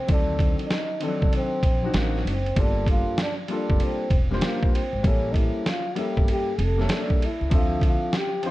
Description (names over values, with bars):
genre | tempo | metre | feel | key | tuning
hip hop, jazz-hop | 97 BPM | 4/4 | swing 66% on 16ths | D minor | A4 = 441 Hz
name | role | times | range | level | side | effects
trombone with cup mute | melody | 0.0-8.5 s | Bb3 to A4 | -29 LUFS | equal | analog delay
dark baby grand piano | accompaniment | 0.1-8.5 s | Eb3 to E5 | -29 LUFS | left 2 dB | none
upright bass | bass | 0.1-8.0 s | E1 to D2 | -27 LUFS | equal | none
trip hop sampler-style drum kit | drums | 0.1-8.5 s | hi-hat, kick drum, ride cymbal, snare drum | -24 LUFS | equal | none
room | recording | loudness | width
small room ambience | dark, warm production | -21 LUFS | side -17 dB against mid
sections
0.0-8.5 A section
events
none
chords
0.1 D7b9; 2.6 Gm9; 5.0 A7b9; 7.5 Dm9